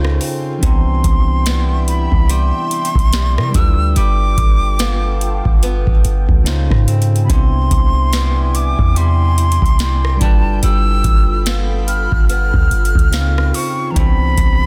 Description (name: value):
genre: contemporary R&B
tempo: 72 BPM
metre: 4/4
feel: swing 58% on 16ths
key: C major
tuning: A4 = 441 Hz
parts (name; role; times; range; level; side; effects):
- bell-like tine electric piano; accompaniment; 0.0-14.7 s; C3 to C5; -27 LUFS; equal; none
- ethereal airy pad; sustained chords; 0.0-14.7 s; E4 to B5; -33 LUFS; equal; ensemble chorus, built-in reverb, phaser, sidechain pumping
- picked acoustic archtop guitar; arpeggios; 0.0-14.7 s; C3 to A4; -30 LUFS; equal; none
- clean 808-style bass; bass; 0.0-14.7 s; G1 to C3; -18 LUFS; equal; none
- booming analog drum machine; drums; 0.0-14.6 s; hi-hat, kick drum, rim click, snare drum; -18 LUFS; equal; none
- downlifter; sound effects; 0.0-0.6 s; none; barely audible; none; none
- hollow concert flute; melody; 0.6-14.7 s; A5 to F6; -24 LUFS; equal; delay
room: digital ambience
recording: dense, heavily limited modern master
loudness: -15 LUFS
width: mono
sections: 0.0-14.7 A section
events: none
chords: 0.0 Dbmaj7; 0.6 Cmaj7; 3.5 G9; 6.5 Dbmaj7; 7.3 Cmaj7; 10.2 G9; 13.1 Dbmaj7; 14.0 Cmaj7